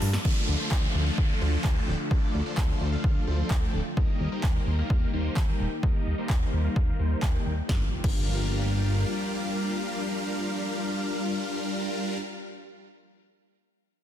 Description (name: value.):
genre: EDM, festival progressive house.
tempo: 129 BPM.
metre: 4/4.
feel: straight.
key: G minor.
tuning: A4 = 440 Hz.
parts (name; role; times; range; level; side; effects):
lush unison pad; sustained chords; 0.0-11.9 s; D3 to G4; -37 LUFS; left 2 dB; chorus, sidechain pumping.
big supersaw lead; riff; 0.0-12.2 s; F3 to G5; -31 LUFS; left 1 dB; sidechain pumping, low-pass filter, ping-pong delay.
fat analog bass; bass; 0.0-9.0 s; D1 to G2; -28 LUFS; equal; sidechain pumping.
big-room dance drum kit; drums; 0.0-8.2 s; crash cymbal, handclaps, hi-hat, shaker, snare drum; -37 LUFS; equal; none.
electronic kick drum; drums; 0.2-8.2 s; none; -26 LUFS; equal; none.
downlifter and impact; sound effects; 0.2-4.0, 7.7-12.0 s; none; -37 LUFS; equal; none.
room: light reverb.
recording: dense, heavily limited modern master.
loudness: -24 LUFS.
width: side -11 dB against mid.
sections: 0.2-7.7 A section; 7.7-11.4 B section.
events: drum fill 0.0; band accent 0.1; filter sweep on supersaw synth 0.2-7.7; filter sweep on analog synth bass 0.2-7.7; filter sweep on analog synth pad 0.2-7.7.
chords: 0.2 Dm; 4.0 Eb; 7.7 Gm7.